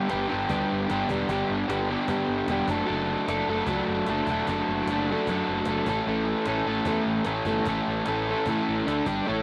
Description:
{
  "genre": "garage rock duo or trio",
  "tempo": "151 BPM",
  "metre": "4/4",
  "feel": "straight",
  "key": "A mixolydian",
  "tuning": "A4 = 440 Hz",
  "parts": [
    { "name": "crunchy overdriven guitar", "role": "riff", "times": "0.0-9.4 s", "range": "G2 to D5", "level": "-27 LUFS", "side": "equal", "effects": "none" },
    { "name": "fuzz picked electric bass", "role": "bass", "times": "0.1-9.4 s", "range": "E1 to A2", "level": "-37 LUFS", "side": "equal", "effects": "overdrive" },
    { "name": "cajon", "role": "drums", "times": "0.1-9.2 s", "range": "none", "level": "-41 LUFS", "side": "equal", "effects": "none" }
  ],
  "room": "light reverb, small room ambience",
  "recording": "none",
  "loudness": "-27 LUFS",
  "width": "mono",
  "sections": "0.0-9.4 A section",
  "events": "none",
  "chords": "0.0 G; 2.7 D/F#; 5.9 A; 8.9 D5; 9.1 G5"
}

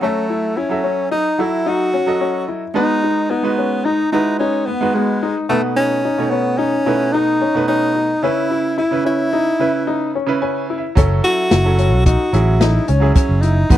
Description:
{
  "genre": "progressive instrumental, band music in an uneven meter",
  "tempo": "110 BPM",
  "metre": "5/4",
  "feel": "straight",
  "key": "F# dorian",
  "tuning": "A4 = 440 Hz",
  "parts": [
    { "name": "warm tenor saxophone", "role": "melody", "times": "0.0-13.8 s", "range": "G#3 to F#4", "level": "-18 LUFS", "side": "equal", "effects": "none" },
    { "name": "bright baby grand piano", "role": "accompaniment", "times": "0.0-13.8 s", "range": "B2 to G#5", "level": "-22 LUFS", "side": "right 5 dB", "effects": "none" },
    { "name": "clear grand piano", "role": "arpeggios", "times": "0.0-13.8 s", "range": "B3 to E4", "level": "-21 LUFS", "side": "left 7 dB", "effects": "none" },
    { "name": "fingered electric bass", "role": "bass", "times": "11.0-13.8 s", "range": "F#1 to C#2", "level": "-14 LUFS", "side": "equal", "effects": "none" },
    { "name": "open jazz drum kit", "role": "drums", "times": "11.0-13.8 s", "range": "hi-hat, kick drum, snare drum", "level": "-15 LUFS", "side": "equal", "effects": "none" }
  ],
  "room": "small room ambience",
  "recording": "dry, close 1970s-style studio recording",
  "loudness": "-14 LUFS",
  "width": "side -12 dB against mid",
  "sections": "0.0-13.8 A section",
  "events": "grand piano fill 10.2-11.0",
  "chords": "0.0 F#m7; 2.8 G#m7; 5.5 B7; 8.2 C#m7; 11.0 F#m7"
}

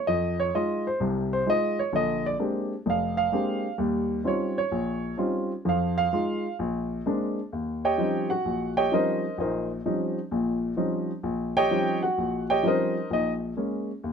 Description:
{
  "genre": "solo jazz",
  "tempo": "129 BPM",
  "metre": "4/4",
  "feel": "swing 67% on 8ths",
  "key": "Eb mixolydian",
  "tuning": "A4 = 440 Hz",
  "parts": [
    { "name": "dark upright piano", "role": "solo", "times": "0.0-14.1 s", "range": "F1 to G5", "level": "-24 LUFS", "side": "equal", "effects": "none" }
  ],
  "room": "light reverb",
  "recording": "close, detailed microphones",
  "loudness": "-24 LUFS",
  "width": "side -6 dB against mid",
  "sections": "0.0-7.5 A section; 7.5-14.1 A section",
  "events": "upright piano solo 0.0-14.1",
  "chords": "0.1 Fm7; 1.9 Bb13; 3.8 Eb13; 5.7 Fm7; 6.6 Bb9; 7.5 Eb13; 13.1 Bbm7"
}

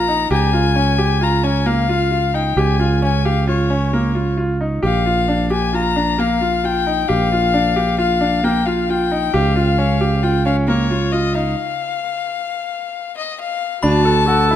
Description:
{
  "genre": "contemporary instrumental, chamber music in an uneven meter",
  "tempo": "133 BPM",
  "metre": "5/4",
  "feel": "straight",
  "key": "unclear",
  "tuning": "A4 = 440 Hz",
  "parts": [
    { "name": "rich violin", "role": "melody", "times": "0.0-14.6 s", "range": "Db5 to Bb5", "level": "-20 LUFS", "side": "left 7 dB", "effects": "none" },
    { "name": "bright concert grand piano", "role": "arpeggios", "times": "0.0-14.6 s", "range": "Bb3 to A4", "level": "-20 LUFS", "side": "equal", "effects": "none" },
    { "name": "overdriven fingered electric bass", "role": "bass", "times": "0.0-14.6 s", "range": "Bb1 to D2", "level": "-18 LUFS", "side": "right 2 dB", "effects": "none" },
    { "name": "dark clarinet", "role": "second line", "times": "13.8-14.6 s", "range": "F#4 to A4", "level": "-18 LUFS", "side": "right 1 dB", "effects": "none" },
    { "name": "glockenspiel with brass mallets", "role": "texture", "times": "13.8-14.6 s", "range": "Cb6", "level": "-27 LUFS", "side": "right 1 dB", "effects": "none" }
  ],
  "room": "moderate scoring stage reverb, RT60 1.9 s",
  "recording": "close, detailed microphones",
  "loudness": "-15 LUFS",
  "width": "side -10 dB against mid",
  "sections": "0.0-13.8 A section",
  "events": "stop 11.6-13.8",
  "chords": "0.3 Db; 4.8 Bb; 9.3 Db; 13.8 D"
}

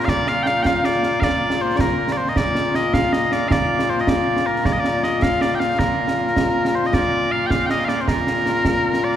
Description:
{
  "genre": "scottish traditional, Scottish pipe music",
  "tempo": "105 BPM (dotted quarters)",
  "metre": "6/8",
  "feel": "straight",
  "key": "Bb major",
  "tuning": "A4 = 440 Hz",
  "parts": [
    { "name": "mellow small bagpipes", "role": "melody", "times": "0.0-9.2 s", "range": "Bb2 to G5", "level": "-18 LUFS", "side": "left 1 dB", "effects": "none" },
    { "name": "concert snare drum and concert bass drum", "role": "drums", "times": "0.1-9.2 s", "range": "none", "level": "-22 LUFS", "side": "right 2 dB", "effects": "none" }
  ],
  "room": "wet church reverb, RT60 3.8 s",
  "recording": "recorded in a church or concert hall",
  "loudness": "-17 LUFS",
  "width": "side -10 dB against mid",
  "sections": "0.0-6.9 A section; 6.9-9.2 B section",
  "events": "none",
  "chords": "none"
}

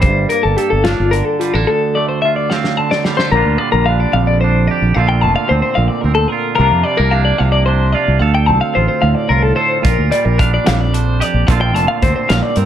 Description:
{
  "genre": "math rock and midwest emo",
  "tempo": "74 BPM (dotted quarters)",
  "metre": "6/8",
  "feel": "straight",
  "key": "unclear",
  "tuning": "A4 = 440 Hz",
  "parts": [
    { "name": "twangy electric guitar", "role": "accompaniment", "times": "0.0-12.7 s", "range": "D2 to A4", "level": "-19 LUFS", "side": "right 9 dB", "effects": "none" },
    { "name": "twelve-string electric guitar", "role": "arpeggios", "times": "0.0-12.7 s", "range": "F4 to A5", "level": "-16 LUFS", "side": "left 5 dB", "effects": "tremolo, plate reverb" },
    { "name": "fingered electric bass", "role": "bass", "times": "0.0-12.7 s", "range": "F1 to G2", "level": "-15 LUFS", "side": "equal", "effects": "none" },
    { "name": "loose indie drum kit", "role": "drums", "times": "0.0-3.3, 9.8-12.7 s", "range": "hi-hat, kick drum, snare drum", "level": "-18 LUFS", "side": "equal", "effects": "none" }
  ],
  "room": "light reverb",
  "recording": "none",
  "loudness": "-12 LUFS",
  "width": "side -10 dB against mid",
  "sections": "0.0-3.3 A section; 3.3-12.7 B section",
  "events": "drum fill 2.5-3.3",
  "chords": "0.0 Gm9; 1.7 Dm7; 3.3 Bb6; 4.9 Gm11 (rootless); 6.6 C9sus4; 8.2 Dm7; 9.8 Bb6; 11.5 Gm11"
}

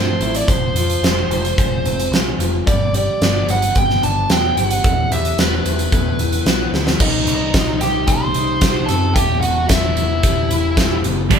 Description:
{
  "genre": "quiet-loud alternative rock",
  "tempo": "111 BPM",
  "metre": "4/4",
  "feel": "straight",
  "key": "unclear",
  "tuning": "A4 = 439 Hz",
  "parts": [
    { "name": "bluesy overdriven lead guitar", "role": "melody", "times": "0.0-11.4 s", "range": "D4 to C6", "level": "-20 LUFS", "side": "right 1 dB", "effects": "distortion" },
    { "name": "electric guitar through a small old amp", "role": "arpeggios", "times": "0.0-11.3 s", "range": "C3 to G4", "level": "-25 LUFS", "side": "left 2 dB", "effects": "none" },
    { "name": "overdriven picked electric bass", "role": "bass", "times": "0.0-11.4 s", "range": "E1 to G2", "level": "-21 LUFS", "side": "equal", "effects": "none" },
    { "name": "huge arena drum kit", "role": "drums", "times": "0.2-11.4 s", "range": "crash cymbal, hi-hat, kick drum, snare drum", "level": "-18 LUFS", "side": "equal", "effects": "none" },
    { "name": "thick fuzz guitar", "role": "riff", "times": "11.3-11.4 s", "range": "G2 to G3", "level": "-14 LUFS", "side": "right 8 dB", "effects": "distortion" }
  ],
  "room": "light reverb",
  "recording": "band playing live in one room",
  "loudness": "-14 LUFS",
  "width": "side -7 dB against mid",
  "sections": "0.0-7.0 A section; 7.0-11.4 B section",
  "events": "drum fill 6.7",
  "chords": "0.5 Fm; 2.7 G; 4.8 Em; 7.0 Cm; 9.2 Em"
}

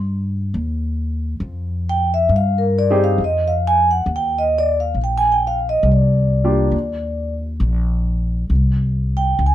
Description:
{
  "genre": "jazz ballad",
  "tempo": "68 BPM",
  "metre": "4/4",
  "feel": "swing 67% on 8ths",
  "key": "Eb major",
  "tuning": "A4 = 440 Hz",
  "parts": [
    { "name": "upright bass", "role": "bass", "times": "0.0-9.5 s", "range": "Bb1 to G2", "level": "-18 LUFS", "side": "equal", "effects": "none" },
    { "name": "vibraphone with soft mallets", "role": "melody", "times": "1.9-9.5 s", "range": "Bb4 to Ab5", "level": "-18 LUFS", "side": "equal", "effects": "none" },
    { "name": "warm concert grand piano", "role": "accompaniment", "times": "2.9-6.8 s", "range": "Bb3 to Ab4", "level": "-21 LUFS", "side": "right 1 dB", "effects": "none" }
  ],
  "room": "light reverb",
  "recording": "none",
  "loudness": "-16 LUFS",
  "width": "side -12 dB against mid",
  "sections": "0.0-9.5 A section",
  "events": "vibraphone solo 0.0-9.5",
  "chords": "0.0 Ebadd9; 3.2 Ebsus2; 5.0 Bb69; 6.7 Eb5; 8.5 C5"
}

